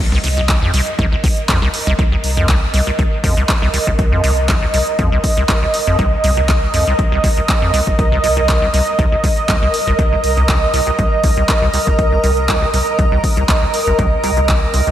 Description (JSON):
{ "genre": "acid house", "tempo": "120 BPM", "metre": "4/4", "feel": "swing 54% on 16ths", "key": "C minor", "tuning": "A4 = 440 Hz", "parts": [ { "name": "warm analog pad", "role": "sustained chords", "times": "0.0-14.9 s", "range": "Eb5", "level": "-19 LUFS", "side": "right 2 dB", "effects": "chorus, sidechain pumping" }, { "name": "saturated sub bass", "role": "bass", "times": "0.0-14.8 s", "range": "G1 to C2", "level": "-20 LUFS", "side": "equal", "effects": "tube saturation, sidechain pumping" }, { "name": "acid bass, square", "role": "riff", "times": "0.1-14.9 s", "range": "C2 to F2", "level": "-19 LUFS", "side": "equal", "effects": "overdrive, analog chorus, diffuse ambient delay" }, { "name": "punchy analog drum machine", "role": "drums", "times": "0.2-14.9 s", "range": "handclaps, hi-hat", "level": "-22 LUFS", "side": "equal", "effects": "overdrive, studio reverb" }, { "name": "granular cloud pad", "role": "texture", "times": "0.9-14.9 s", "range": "Bb4", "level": "-24 LUFS", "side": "right 1 dB", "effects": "built-in reverb, phaser, sidechain pumping" }, { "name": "electronic kick drum", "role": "drums", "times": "0.5-14.6 s", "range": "none", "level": "-16 LUFS", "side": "equal", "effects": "overdrive, studio reverb" } ], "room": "moderate lush hall reverb, RT60 2.0 s, digital ambience", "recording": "dreamy mix soaked in reverb", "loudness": "-12 LUFS", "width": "side -11 dB against mid", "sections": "0.0-14.9 A section", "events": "none", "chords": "0.0 Cm", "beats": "0.49 0.99 1.49 | 1.99 2.49 2.99 3.49 | 3.99 4.49 4.99 5.49 | 5.99 6.49 6.99 7.49 | 7.99 8.49 8.99 9.49 | 9.99 10.49 10.99 11.49 | 11.99 12.49 12.99 13.49 | 13.99 14.49" }